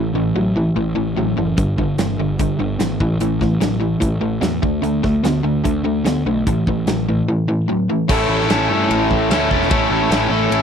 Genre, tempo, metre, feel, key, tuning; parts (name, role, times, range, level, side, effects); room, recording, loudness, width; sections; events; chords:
classic rock; 147 BPM; 4/4; straight; A mixolydian; A4 = 440 Hz
crunchy overdriven guitar; riff; 0.0-10.6 s; G2 to A4; -17 LUFS; equal
fuzz picked electric bass; bass; 0.0-10.6 s; E1 to G2; -23 LUFS; equal; overdrive
big rock drum kit; drums; 1.6-10.6 s; crash cymbal, hi-hat, kick drum, ride cymbal, snare drum; -22 LUFS; equal
little or no reverb; dry, close 1970s-style studio recording; -15 LUFS; side -7 dB against mid
0.0-8.1 A section; 8.1-10.6 B section
0.0 A5; 1.6 G5; 3.0 A5; 4.6 D5; 6.5 A5; 8.1 A